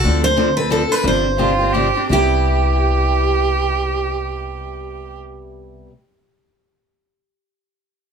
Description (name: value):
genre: acoustic string swing (jazz manouche)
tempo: 157-185 BPM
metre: 3/4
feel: swing 60% on 8ths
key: C major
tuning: A4 = 440 Hz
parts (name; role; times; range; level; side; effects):
- picked steel-string acoustic guitar; melody; 0.0-5.9 s; G4 to C5; -20 LUFS; right 2 dB; plate reverb
- picked steel-string acoustic guitar; accompaniment; 0.0-5.9 s; C3 to A4; -22 LUFS; left 2 dB; none
- upright bass; bass; 0.0-5.9 s; G1 to D2; -21 LUFS; equal; none
- rich violin; second line; 1.4-5.2 s; F4 to G4; -22 LUFS; right 5 dB; none
room: moderate studio reverb, RT60 0.7 s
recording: none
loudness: -15 LUFS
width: side -6 dB against mid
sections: 0.0-2.1 A section; 2.1-4.4 B section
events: slowing down 0.0-2.1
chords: 0.0 Dm7; 1.0 G7sus4; 2.1 Cmaj7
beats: | 0.04 0.36 0.69 | 1.03 1.38 1.74 | 2.11 2.49 2.88 | 3.26 3.64 4.02